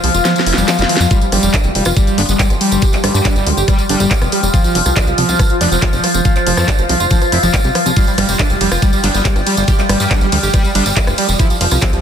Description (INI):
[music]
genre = psychedelic trance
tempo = 140 BPM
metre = 4/4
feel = straight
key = unclear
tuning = A4 = 440 Hz
[part]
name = overdriven synth lead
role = melody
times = 0.0-12.0 s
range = F3 to G4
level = -21 LUFS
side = equal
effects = chorus, phaser, sidechain pumping, tape echo
[part]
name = overtone-sweeping drone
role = sustained chords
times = 0.0-12.0 s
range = F3 to F4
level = -21 LUFS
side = equal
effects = chorus, built-in reverb, sidechain pumping
[part]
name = screaming distorted acid line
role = riff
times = 0.0-11.9 s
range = E3 to Ab3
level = -21 LUFS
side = moving between left 3 dB and right 4 dB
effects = distortion, chorus, auto-pan, sidechain pumping, tape echo
[part]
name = plucky analog bass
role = bass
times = 0.0-12.0 s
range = F1 to G2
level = -17 LUFS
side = equal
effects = none
[part]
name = drum and bass drum kit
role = drums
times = 0.0-12.0 s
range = handclaps, hi-hat, ride cymbal, rim click, snare drum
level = -19 LUFS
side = left 1 dB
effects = none
[part]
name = warbly tape-like pad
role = texture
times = 0.0-12.0 s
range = F4 to G5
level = -24 LUFS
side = left 1 dB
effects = chorus, built-in reverb, sidechain pumping
[part]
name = tambourine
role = percussion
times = 0.1-12.0 s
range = none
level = -24 LUFS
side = right 3 dB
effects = none
[part]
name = electronic kick drum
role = drums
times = 1.1-11.9 s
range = none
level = -14 LUFS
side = equal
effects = none
[part]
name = metallic wobble bass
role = second line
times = 2.2-10.9 s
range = G3 to B3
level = -30 LUFS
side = left 6 dB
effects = none
[sound]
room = light reverb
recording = dense, heavily limited modern master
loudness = -11 LUFS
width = side -8 dB against mid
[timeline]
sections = 0.0-12.0 A section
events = kick drops out 0.3-1.1; drum fill 0.3-1.1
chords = 0.0 F5; 1.1 G5; 4.5 F5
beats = 0.25 0.68 | 1.11 1.54 1.97 2.39 | 2.82 3.25 3.68 4.11 | 4.54 4.97 5.39 5.82 | 6.25 6.68 7.11 7.54 | 7.97 8.39 8.82 9.25 | 9.68 10.11 10.54 10.97 | 11.39 11.82